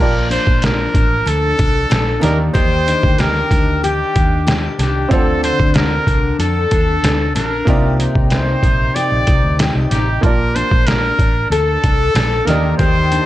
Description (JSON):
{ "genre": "indie pop, bedroom pop", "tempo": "94 BPM", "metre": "4/4", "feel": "straight", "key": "Bb major", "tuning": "A4 = 441 Hz", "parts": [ { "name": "bright trumpet", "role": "melody", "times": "0.0-13.3 s", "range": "G4 to D5", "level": "-19 LUFS", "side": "equal", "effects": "wide subtle chorus" }, { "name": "bright upright piano", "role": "accompaniment", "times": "0.0-13.3 s", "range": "Bb3 to A5", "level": "-24 LUFS", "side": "right 4 dB", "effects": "cassette tape" }, { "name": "picked steel-string acoustic guitar", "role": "accompaniment", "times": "0.0-13.3 s", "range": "C3 to A4", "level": "-20 LUFS", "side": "left 4 dB", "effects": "analog chorus, vibrato effect" }, { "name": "vintage muted fingered electric bass", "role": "bass", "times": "0.0-13.2 s", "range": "A1 to F2", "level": "-19 LUFS", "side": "equal", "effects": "none" }, { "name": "trip hop sampler-style drum kit", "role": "drums", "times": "0.3-13.3 s", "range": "hi-hat, kick drum, snare drum", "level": "-16 LUFS", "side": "equal", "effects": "vintage 12-bit sampler grit" } ], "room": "light reverb, digital ambience", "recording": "cassette tape", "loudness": "-12 LUFS", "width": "side -14 dB against mid", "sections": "0.0-13.3 A section", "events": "none", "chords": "0.0 Bbmaj7; 2.2 Ebmaj7; 5.1 Dm7; 7.7 Cm11; 10.2 Bbmaj7; 12.5 Ebmaj7" }